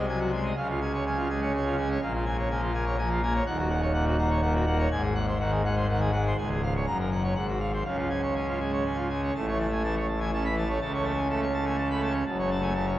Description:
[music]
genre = classical, organ toccata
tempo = 124 BPM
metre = 3/4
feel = straight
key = Db major, A major from 9.3 s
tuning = A4 = 440 Hz
[part]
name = pipe organ, full organ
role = solo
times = 0.0-13.0 s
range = Db1 to B5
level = -25 LUFS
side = equal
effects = none
[sound]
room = wet cathedral reverb, RT60 6.5 s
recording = worn, warbling old tape, cassette tape, warbly pitch drift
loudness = -25 LUFS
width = side -14 dB against mid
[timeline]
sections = 0.0-9.3 A section; 9.3-13.0 B section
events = none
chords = 0.0 Ab7/C; 0.6 Db; 2.0 Bbm7; 3.5 Ebm7; 4.9 Ab7; 6.4 Db; 6.9 Gb; 7.4 Ab6; 7.8 Db; 9.3 A; 10.8 A/C#; 12.3 F#m

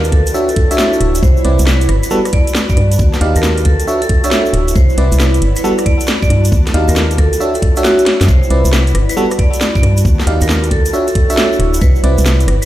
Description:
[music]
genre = UK garage, two-step garage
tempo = 136 BPM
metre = 4/4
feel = swing 66% on 16ths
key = unclear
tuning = A4 = 441 Hz
[part]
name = vibraphone with medium hard mallets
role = melody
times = 0.0-12.7 s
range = F#4 to D5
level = -21 LUFS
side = equal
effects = ping-pong delay
[part]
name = FM electric piano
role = stabs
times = 0.0-12.5 s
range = G3 to F5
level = -17 LUFS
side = right 1 dB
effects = chorus, ping-pong delay
[part]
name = organ-like FM bass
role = bass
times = 0.0-12.6 s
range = D1 to G2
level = -12 LUFS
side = equal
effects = none
[part]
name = garage drum kit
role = drums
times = 0.0-12.7 s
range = hi-hat, rim click, snare drum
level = -18 LUFS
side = equal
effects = studio ambience
[part]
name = tube shaker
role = percussion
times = 0.0-12.7 s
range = none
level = -28 LUFS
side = right 4 dB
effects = none
[part]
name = ethereal airy pad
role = texture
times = 0.0-12.7 s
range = E4 to A5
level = -22 LUFS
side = left 1 dB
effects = ensemble chorus, built-in reverb, sidechain pumping
[part]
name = electronic kick drum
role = drums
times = 0.1-11.9 s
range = none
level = -12 LUFS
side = equal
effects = studio ambience
[sound]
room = little or no reverb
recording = played on a big sound system in a bare room, large studio reverb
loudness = -10 LUFS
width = side -14 dB against mid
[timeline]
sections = 0.0-12.7 A section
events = kick drops out 7.8-8.3; drum fill 8.1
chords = 0.1 Dmaj9; 1.2 Cmaj9; 1.9 Gmaj9; 3.0 Ebmaj9; 3.7 Dmaj9; 4.8 Cmaj9; 5.4 Gmaj9; 6.5 Ebmaj9; 7.2 Dmaj9; 8.3 Cmaj9; 8.9 Gmaj9; 10.1 Ebmaj9; 10.7 Dmaj9; 11.8 Cmaj9

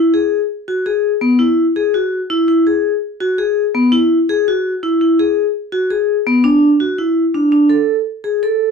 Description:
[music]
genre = progressive instrumental, progressive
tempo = 167 BPM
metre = 7/4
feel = straight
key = unclear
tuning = A4 = 440 Hz
[part]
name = vibraphone with hard mallets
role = solo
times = 0.0-8.7 s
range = B3 to A4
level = -13 LUFS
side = left 1 dB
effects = none
[sound]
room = moderate studio reverb, RT60 0.6 s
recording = dry, close 1970s-style studio recording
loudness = -13 LUFS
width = side -5 dB against mid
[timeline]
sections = 0.0-8.7 A section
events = none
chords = none

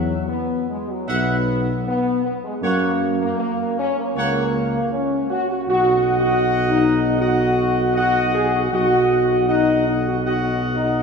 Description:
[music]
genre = classical, ceremonial fanfare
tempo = 78 BPM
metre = 4/4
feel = straight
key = B major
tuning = A4 = 440 Hz
[part]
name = dark trombone section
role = sustained chords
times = 0.0-11.0 s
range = F#3 to G#4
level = -25 LUFS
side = right 3 dB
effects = none
[part]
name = mellow French horn section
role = sustained chords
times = 0.0-11.0 s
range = F#3 to G#4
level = -21 LUFS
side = left 3 dB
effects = none
[part]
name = mellow tuba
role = bass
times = 0.0-11.0 s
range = B1 to F#2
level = -23 LUFS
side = right 1 dB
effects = none
[part]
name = bright trumpet section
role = melody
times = 1.1-11.0 s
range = C#5 to F#5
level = -26 LUFS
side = right 2 dB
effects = none
[sound]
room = wet church reverb, RT60 3.0 s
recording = recorded in a church or concert hall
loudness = -17 LUFS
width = side -5 dB against mid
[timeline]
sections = 0.0-11.0 A section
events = none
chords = 0.0 Esus2 (rootless); 2.6 F#; 5.7 B

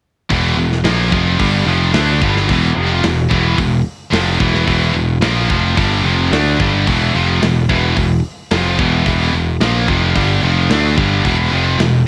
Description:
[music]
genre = heavy metal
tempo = 110 BPM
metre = 4/4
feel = straight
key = unclear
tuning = A4 = 441 Hz
[part]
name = high-gain distorted guitar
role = riff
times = 0.3-12.0 s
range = E2 to D4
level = -20 LUFS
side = equal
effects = distortion, cassette tape
[part]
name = scooped high-gain guitar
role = riff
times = 0.3-12.0 s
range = E2 to D4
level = -21 LUFS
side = equal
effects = distortion, cassette tape
[part]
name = modern bright picked electric bass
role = bass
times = 0.3-12.0 s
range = E1 to D2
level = -19 LUFS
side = equal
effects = none
[part]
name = tight metal drum kit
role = drums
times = 0.3-11.9 s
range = hi-hat, kick drum, snare drum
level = -23 LUFS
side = equal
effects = cassette tape
[sound]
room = little or no reverb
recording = home recording on cassette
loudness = -15 LUFS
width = mono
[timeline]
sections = 0.3-12.1 A section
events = none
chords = 0.3 Em

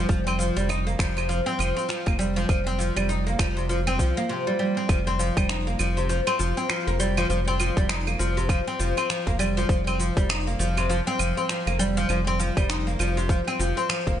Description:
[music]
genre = organic downtempo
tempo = 100 BPM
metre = 4/4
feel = swing 59% on 16ths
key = unclear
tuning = A4 = 437 Hz
[part]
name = oud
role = arpeggios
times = 0.0-14.2 s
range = C3 to Eb4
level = -25 LUFS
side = equal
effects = tape echo
[part]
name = round analog bass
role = bass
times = 0.0-14.2 s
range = F1 to C2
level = -27 LUFS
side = equal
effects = none
[part]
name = electronic kick drum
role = drums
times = 0.1-14.2 s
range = none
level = -24 LUFS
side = equal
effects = none
[part]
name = electronic shaker, claves and finger snaps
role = drums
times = 0.1-14.2 s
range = none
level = -30 LUFS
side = right 2 dB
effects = none
[sound]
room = light reverb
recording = nothing above 10.7 kHz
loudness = -22 LUFS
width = side -10 dB against mid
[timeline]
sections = 0.0-4.9 A section; 4.9-14.2 B section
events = none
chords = none

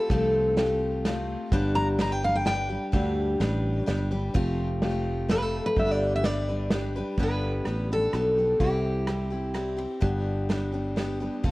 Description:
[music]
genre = honky-tonk and classic country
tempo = 127 BPM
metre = 3/4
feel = straight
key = G mixolydian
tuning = A4 = 440 Hz
[part]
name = picked steel-string acoustic guitar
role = melody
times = 0.0-9.7 s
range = G4 to Bb5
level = -27 LUFS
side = left 1 dB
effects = none
[part]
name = picked steel-string acoustic guitar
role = accompaniment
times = 0.0-11.5 s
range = G2 to B4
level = -30 LUFS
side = left 1 dB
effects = none
[part]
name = sustaining fretless electric bass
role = bass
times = 0.1-11.5 s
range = F1 to D2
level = -29 LUFS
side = equal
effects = none
[part]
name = unplugged drum kit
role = drums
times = 0.1-11.5 s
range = crash cymbal, kick drum, ride cymbal, rim click, snare drum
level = -29 LUFS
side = right 1 dB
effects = none
[sound]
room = light reverb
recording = worn, warbling old tape, cassette tape, warbly pitch drift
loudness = -24 LUFS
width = side -20 dB against mid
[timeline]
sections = 0.0-7.2 A section; 7.2-11.5 B section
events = steel-string acoustic guitar solo 0.0-7.2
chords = 0.0 Fadd9; 1.5 G; 4.4 Fadd9; 5.8 G; 8.6 C; 10.0 G

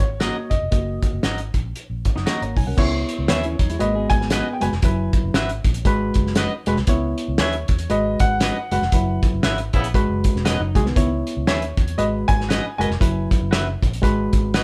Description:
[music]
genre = uptempo 1960s-style soul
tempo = 117 BPM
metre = 4/4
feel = swing 59% on 8ths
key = unclear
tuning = A4 = 440 Hz
[part]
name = dark baby grand piano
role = melody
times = 0.0-13.3 s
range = C#5 to G#5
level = -28 LUFS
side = equal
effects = none
[part]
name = vintage muted fingered electric bass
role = bass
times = 0.0-14.6 s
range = E1 to E2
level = -28 LUFS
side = equal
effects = none
[part]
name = cloth-damped thuddy drum kit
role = drums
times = 0.0-14.6 s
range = crash cymbal, hi-hat, kick drum, snare drum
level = -23 LUFS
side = equal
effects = none
[part]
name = barky reed electric piano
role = accompaniment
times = 0.2-14.6 s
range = F#3 to D#6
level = -26 LUFS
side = equal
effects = overdrive
[part]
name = clean electric guitar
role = stabs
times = 0.2-14.6 s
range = F#4 to E5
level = -28 LUFS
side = equal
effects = none
[part]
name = clean electric guitar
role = riff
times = 2.2-4.7, 10.5-11.1 s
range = D#3 to G#4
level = -30 LUFS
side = equal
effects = none
[part]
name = clear horn section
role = second line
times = 9.4-9.9 s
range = C#3 to E4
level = -29 LUFS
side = equal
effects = none
[sound]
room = moderate studio reverb, RT60 0.5 s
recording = band playing live in one room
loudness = -20 LUFS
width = mono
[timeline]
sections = 0.0-2.8 A section; 2.8-14.6 B section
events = band accent 8.9-11.0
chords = 0.0 F#6; 2.8 C#m7; 3.8 G#m7; 4.8 F#7sus4; 5.9 G#m7; 6.9 C#m7; 7.9 G#m7; 8.9 F#7sus4; 9.9 G#m7; 11.0 C#m7; 12.0 G#m7; 13.0 F#7sus4; 14.0 G#m7

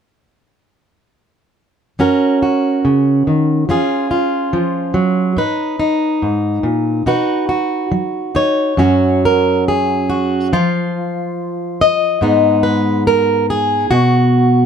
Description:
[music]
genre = folk, solo fingerstyle acoustic guitar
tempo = 71 BPM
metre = 4/4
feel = straight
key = F# major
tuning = A4 = 440 Hz
[part]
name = fingerpicked plugged-in steel-string acoustic guitar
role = solo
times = 2.0-14.7 s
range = F#2 to D#5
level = -13 LUFS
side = equal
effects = none
[sound]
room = moderate studio reverb, RT60 0.7 s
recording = none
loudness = -13 LUFS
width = side -7 dB against mid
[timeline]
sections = 2.0-8.8 A section; 8.8-14.7 B section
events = none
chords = 2.0 F#; 3.7 C#/E#; 5.4 G#m; 7.1 B; 8.8 F#5; 10.5 N.C.; 12.2 G#m; 13.9 N.C.

